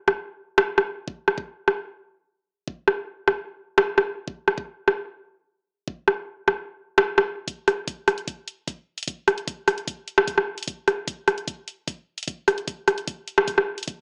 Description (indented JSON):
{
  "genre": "dubstep",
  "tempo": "150 BPM",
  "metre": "4/4",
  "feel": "half-time",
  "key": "none",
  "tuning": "none",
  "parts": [
    { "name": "big-room dance drum kit", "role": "drums", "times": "0.1-14.0 s", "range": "hi-hat, rim click", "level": "-22 LUFS", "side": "equal", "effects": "none" },
    { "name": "electronic kick drum", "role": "drums", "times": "0.1-14.0 s", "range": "none", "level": "-38 LUFS", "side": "equal", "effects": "none" }
  ],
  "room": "moderate plate reverb, RT60 0.9 s, digital ambience",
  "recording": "small speaker sound",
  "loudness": "-25 LUFS",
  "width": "mono",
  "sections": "0.0-7.5 A section; 7.5-14.0 B section",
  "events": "build-up 7.5-14.0",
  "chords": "none",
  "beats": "0.28 0.68 | 1.08 1.48 1.88 2.28 | 2.68 3.08 3.48 3.88 | 4.28 4.68 5.08 5.48 | 5.88 6.28 6.68 7.08 | 7.48 7.88 8.28 8.68 | 9.08 9.48 9.88 10.28 | 10.68 11.08 11.48 11.88 | 12.28 12.68 13.08 13.48 | 13.88"
}